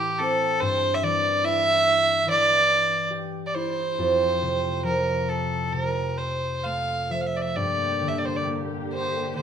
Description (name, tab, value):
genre	celtic folk, Celtic slow air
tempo	64-74 BPM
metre	4/4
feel	rubato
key	unclear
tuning	A4 = 440 Hz
part	warm fiddle	melody	0.0-9.4 s	G4 to F5	-23 LUFS	right 1 dB	none
part	concert harp	accompaniment	0.0-9.4 s	F2 to G4	-27 LUFS	equal	none
part	muted studio string section	sustained chords	7.6-9.4 s	D3 to G4	-33 LUFS	right 2 dB	none
room	moderate recital hall reverb, RT60 1.3 s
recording	minimal, uncompressed stereo recording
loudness	-21 LUFS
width	side -8 dB against mid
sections	0.0-9.4 A section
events	none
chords	0.0 Am7; 0.6 Cadd9/G; 4.0 F; 7.6 Gm